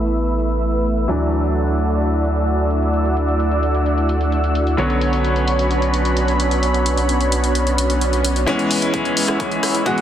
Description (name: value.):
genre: EDM, festival progressive house.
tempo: 130 BPM.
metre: 4/4.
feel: straight.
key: unclear.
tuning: A4 = 440 Hz.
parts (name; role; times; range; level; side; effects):
bright grand piano; accompaniment; 0.0-10.0 s; D3 to C#5; -23 LUFS; equal; sidechain pumping, dub echo.
lush unison pad; sustained chords; 0.0-10.0 s; B4 to E6; -26 LUFS; equal; chorus, sidechain pumping.
supersaw chords; riff; 0.0-10.0 s; G#3 to F#5; -21 LUFS; right 1 dB; sidechain pumping, low-pass filter, dub echo.
saturated sub bass; bass; 0.0-10.0 s; A1 to D2; -20 LUFS; equal; sidechain pumping, high-pass filter.
big-room dance drum kit; drums; 0.1-10.0 s; hi-hat, rim click; -26 LUFS; left 1 dB; high-pass filter on hats, small room ambience, soft clipping on snare, high-pass filter on snare.
swell and riser; sound effects; 7.8-10.0 s; none; -31 LUFS; right 6 dB; none.
electronic kick drum; drums; 8.5-10.0 s; none; -28 LUFS; equal; high-pass filter on kick, small room ambience.
room: moderate lush hall reverb, RT60 1.8 s, digital ambience.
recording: dense, heavily limited modern master, low-pass filter.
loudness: -16 LUFS.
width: side -10 dB against mid.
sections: 0.0-8.5 A section; 8.5-10.0 B section.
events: filter sweep 0.0-8.5; swell 7.8-8.5; build-up 8.5-10.0; filter sweep on supersaw synth 8.5-10.0.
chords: 0.0 Asus2; 1.1 Dadd9; 4.8 Bmadd9; 8.5 C#m7.